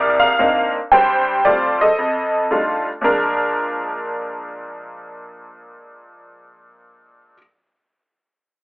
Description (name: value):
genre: solo jazz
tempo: 114 BPM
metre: 4/4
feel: swing 67% on 8ths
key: Bb major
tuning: A4 = 441 Hz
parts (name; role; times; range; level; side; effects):
- honky-tonk upright piano; solo; 0.0-7.4 s; C2 to G5; -16 LUFS; equal; none
room: moderate club reverb, RT60 0.8 s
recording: telephone sound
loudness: -15 LUFS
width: side -25 dB against mid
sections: 0.0-3.0 A section; 3.0-7.2 B section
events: none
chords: 0.0 Cm9; 0.9 G9sus4; 2.0 F13; 3.0 Bb7